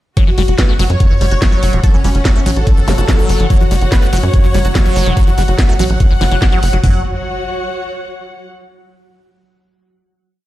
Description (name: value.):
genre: psychedelic trance.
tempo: 144 BPM.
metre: 4/4.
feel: straight.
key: F# minor.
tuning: A4 = 439 Hz.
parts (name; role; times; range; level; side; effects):
dense compressed supersaw; melody; 0.2-7.0 s; C#4 to F#5; -22 LUFS; equal; phaser, sidechain pumping, tape echo.
liquid acid bass; riff; 0.2-7.0 s; E3 to G4; -22 LUFS; moving between left 4 dB and right 3 dB; phaser, auto-pan, sidechain pumping, tape echo.
drum and bass drum kit; drums; 0.2-6.9 s; hi-hat, kick drum, toms; -11 LUFS; equal; none.
drum and bass drum kit; drums; 0.2-6.8 s; hi-hat, snare drum; -21 LUFS; equal; none.
warm studio string section; texture; 0.2-8.5 s; F#4 to F#5; -25 LUFS; left 2 dB; sidechain pumping.
tight sequencer bass; bass; 0.4-7.0 s; E1 to F#2; -14 LUFS; equal; none.
zap; sound effects; 2.9-3.0 s; none; -24 LUFS; equal; none.
bubbling stepped-filter texture; sustained chords; 3.5-6.9 s; F#3; -26 LUFS; right 4 dB; chorus, built-in reverb, sidechain pumping.
room: little or no reverb.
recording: played on a big sound system in a bare room, large studio reverb.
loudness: -10 LUFS.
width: side -15 dB against mid.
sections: 0.2-6.8 drop; 6.8-8.5 final chord.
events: drop 0.2-6.8.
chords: 0.2 F#5.